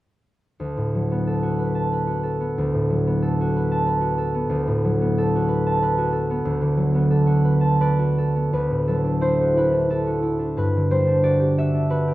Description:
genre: classical, solo harp piece.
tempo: 91 BPM.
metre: 3/4.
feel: rubato.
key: D major.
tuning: A4 = 438 Hz.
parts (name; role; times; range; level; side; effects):
concert harp; solo; 0.6-12.1 s; D2 to A5; -19 LUFS; equal; none.
room: moderate recital hall reverb, RT60 1.7 s.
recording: dark, warm production.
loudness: -19 LUFS.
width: side -16 dB against mid.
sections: 0.6-8.6 A section; 8.6-12.1 B section.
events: none.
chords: 0.6 D6; 8.6 Dadd9; 10.6 Gmaj7.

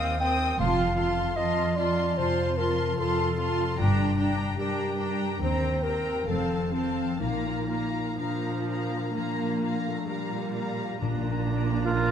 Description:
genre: classical, slow romantic movement for symphony orchestra.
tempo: 60-77 BPM.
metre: 4/4.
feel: rubato.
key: Bb major.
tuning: A4 = 440 Hz.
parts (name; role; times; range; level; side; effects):
rich studio violin section; melody; 0.0-12.1 s; A5 to Eb6; -36 LUFS; left 3 dB; none.
dark clarinet; second line; 0.0-10.6 s; C4 to G5; -30 LUFS; left 1 dB; none.
rich chamber violin section; second line; 0.0-12.1 s; F4 to A5; -36 LUFS; left 6 dB; none.
rich chamber viola section; accompaniment; 0.0-12.1 s; F3 to F4; -32 LUFS; right 4 dB; none.
concert harp; arpeggios; 0.0-12.1 s; F2 to D5; -33 LUFS; left 8 dB; none.
warm chamber cello section; bass; 0.0-12.1 s; Eb2 to Bb2; -32 LUFS; right 3 dB; none.
warm chamber double bass section; bass; 0.6-12.1 s; F1 to Eb2; -31 LUFS; right 3 dB; none.
timpani; percussion; 11.0-12.1 s; Bb2; -34 LUFS; left 2 dB; none.
clear oboe; second line; 11.9-12.1 s; F4; -26 LUFS; right 3 dB; none.
room: moderate concert hall reverb, RT60 2.0 s.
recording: none.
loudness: -25 LUFS.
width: side -8 dB against mid.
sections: 0.0-11.0 A section; 11.0-12.1 A section.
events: none.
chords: 0.0 Cm7/Eb; 0.6 F; 3.8 Gm; 5.4 Cm7/Eb; 6.3 F; 7.2 Bb.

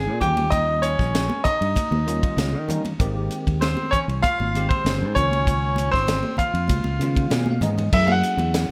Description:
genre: electric jazz fusion.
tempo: 97 BPM.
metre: 4/4.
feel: straight.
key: unclear.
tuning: A4 = 440 Hz.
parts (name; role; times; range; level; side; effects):
bright baby grand piano; melody; 0.0-8.7 s; C5 to Ab5; -27 LUFS; equal; none.
warm tenor saxophone; second line; 0.0-7.6 s; C4 to Ab4; -32 LUFS; equal; none.
bell-like tine electric piano; accompaniment; 0.0-8.7 s; Eb3 to Ab5; -32 LUFS; equal; ensemble chorus.
fingered electric bass; bass; 0.0-8.7 s; G1 to Eb3; -26 LUFS; equal; none.
tight funk drum kit; drums; 0.2-8.7 s; crash cymbal, hi-hat, kick drum, ride cymbal, snare drum; -28 LUFS; equal; gated reverb.
congas; percussion; 0.2-8.5 s; none; -33 LUFS; equal; none.
room: moderate plate reverb, RT60 1.3 s, studio reverb.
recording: bright 1980s-style digital production.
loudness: -22 LUFS.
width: mono.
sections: 0.0-7.9 A section.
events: tine electric piano fill 7.0-7.9; drum fill 7.1-7.9.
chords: 0.2 Eb9; 3.0 Abmaj7; 5.1 Db69; 6.7 Db7; 7.9 F#m7.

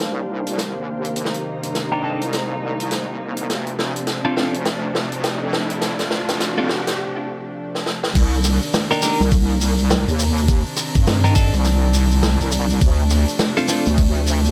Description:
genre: glitch hop.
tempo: 103 BPM.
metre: 4/4.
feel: swing 61% on 16ths.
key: C dorian.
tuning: A4 = 437 Hz.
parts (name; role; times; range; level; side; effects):
dark studio string section; sustained chords; 0.0-14.5 s; C3 to Eb4; -29 LUFS; equal; sidechain pumping, low-pass filter.
wobble bass; bass; 0.0-14.5 s; A1 to G2; -22 LUFS; equal; chorus, high-pass filter.
swinging big-band drum kit; drums; 0.0-14.5 s; crash cymbal, hi-hat, rim click, snare drum; -26 LUFS; equal; high-pass filter on hats, high-pass filter on cymbals, high-pass filter on snare, high-pass filter on room.
riser; sound effects; 1.4-7.0 s; none; -33 LUFS; equal; none.
ethereal airy pad; texture; 0.0-14.5 s; G4 to Bb5; -36 LUFS; equal; none.
twelve-string electric guitar; stabs; 1.9-13.9 s; C4 to Bb4; -25 LUFS; equal; sidechain pumping, low-pass filter, tape echo.
electronic kick drum; drums; 8.2-14.1 s; none; -19 LUFS; equal; none.
shekere; percussion; 8.2-14.5 s; none; -30 LUFS; equal; none.
room: light reverb, studio ambience.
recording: none.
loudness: -20 LUFS.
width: mono.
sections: 0.0-8.2 A section; 8.2-14.5 B section.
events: build-up 0.0-8.2; drum fill 0.0-7.0, 7.7-8.2; filter sweep on string section 0.0-8.2; riser 1.4-7.0; break 7.0-8.2; drop 8.2-14.5.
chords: 0.0 Cm9; 3.5 Dm7; 8.2 Cm9; 12.8 Dm7.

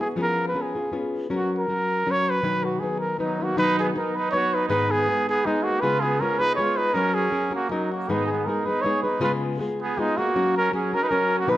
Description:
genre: mexican folk, mariachi.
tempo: 159 BPM.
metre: 3/4.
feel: swing 53% on 8ths.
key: B major.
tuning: A4 = 442 Hz.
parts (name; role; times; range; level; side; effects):
mellow trumpet; melody; 0.0-11.6 s; D#4 to C#5; -24 LUFS; right 1 dB; none.
nylon-string guitar; accompaniment; 0.0-11.6 s; G#2 to B4; -26 LUFS; left 2 dB; none.
warm trumpet; second line; 3.2-11.6 s; F#3 to G#4; -30 LUFS; right 5 dB; none.
room: moderate recital hall reverb, RT60 1.5 s.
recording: none.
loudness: -21 LUFS.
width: side -14 dB against mid.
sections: 0.0-3.6 A section; 3.6-11.6 B section.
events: none.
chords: 0.2 C#7/E#; 1.3 F#; 2.4 B; 4.7 G#m; 5.8 C#7; 7.0 F#; 8.1 G#m; 9.2 C#7; 10.4 F#.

